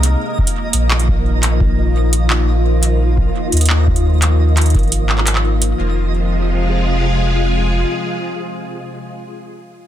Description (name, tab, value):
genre	IDM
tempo	86 BPM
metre	4/4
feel	straight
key	F minor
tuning	A4 = 440 Hz
part	soft string machine	sustained chords	0.0-9.3 s	C3 to Bb4	-20 LUFS	equal	ensemble chorus
part	warm sub bass	bass	0.0-7.8 s	F1 to Eb2	-15 LUFS	equal	none
part	booming analog drum machine	drums	0.0-5.8 s	handclaps, hi-hat	-20 LUFS	right 1 dB	ping-pong delay
part	twinkling granular texture	texture	0.0-5.8 s	Eb5	-30 LUFS	right 3 dB	built-in reverb, sidechain pumping
part	electronic kick drum	drums	0.4-4.9 s	none	-17 LUFS	equal	none
room	little or no reverb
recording	dense, heavily limited modern master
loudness	-13 LUFS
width	side -11 dB against mid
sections	0.0-5.8 A section; 5.8-8.6 B section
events	filter sweep on string machine 0.0-5.8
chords	0.2 Bbsus4; 5.8 Fm